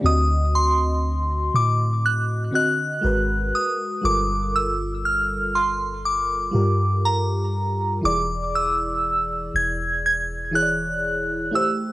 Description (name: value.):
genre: contemporary R&B.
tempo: 60 BPM.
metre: 4/4.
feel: swing 54% on 16ths.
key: unclear.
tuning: A4 = 440 Hz.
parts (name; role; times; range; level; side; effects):
FM electric piano with soft pad layer; accompaniment; 0.0-11.9 s; D3 to Eb5; -27 LUFS; equal; chorus, cassette tape.
soft 808-style bass; bass; 0.0-11.5 s; E1 to A2; -24 LUFS; equal; none.
glassy synth bell; melody; 0.1-11.9 s; Bb5 to G#6; -22 LUFS; equal; chorus, phaser, cassette tape, tape echo.
room: light reverb.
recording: home recording on cassette.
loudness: -20 LUFS.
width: side -17 dB against mid.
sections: 0.0-11.9 A section.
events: none.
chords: 0.0 D7b9; 3.0 Abm9; 4.0 Gm9; 8.0 E7.